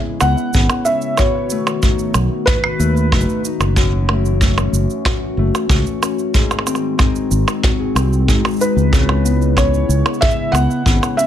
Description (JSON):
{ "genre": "folktronica", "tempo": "93 BPM", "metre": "4/4", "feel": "straight", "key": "C# minor", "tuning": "A4 = 440 Hz", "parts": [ { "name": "warbly tape-like pad", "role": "sustained chords", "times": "0.0-11.3 s", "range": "C#3 to F#4", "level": "-23 LUFS", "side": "left 2 dB", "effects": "chorus, built-in reverb" }, { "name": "Celtic harp", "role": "arpeggios", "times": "0.0-11.3 s", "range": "F#2 to G#4", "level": "-22 LUFS", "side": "left 5 dB", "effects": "ping-pong delay" }, { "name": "felt-muted upright piano", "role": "melody", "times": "0.2-3.4, 8.6-11.3 s", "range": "B4 to F#5", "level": "-20 LUFS", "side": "equal", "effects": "ping-pong delay" }, { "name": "fingered electric bass", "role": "bass", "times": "0.2-11.0 s", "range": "F#1 to G#2", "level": "-16 LUFS", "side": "equal", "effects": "none" }, { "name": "electronic percussion blips, shaker and snare drum", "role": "drums", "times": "0.2-11.3 s", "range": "none", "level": "-21 LUFS", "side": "right 4 dB", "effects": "studio reverb" }, { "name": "kick drum", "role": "drums", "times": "0.5-11.0 s", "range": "none", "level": "-17 LUFS", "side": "equal", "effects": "studio reverb" } ], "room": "light reverb", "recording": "none", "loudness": "-14 LUFS", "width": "side -10 dB against mid", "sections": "0.0-11.3 A section", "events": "none", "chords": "0.0 C#m7; 1.2 B7; 3.8 F#m7; 6.3 G#7; 8.9 C#m7" }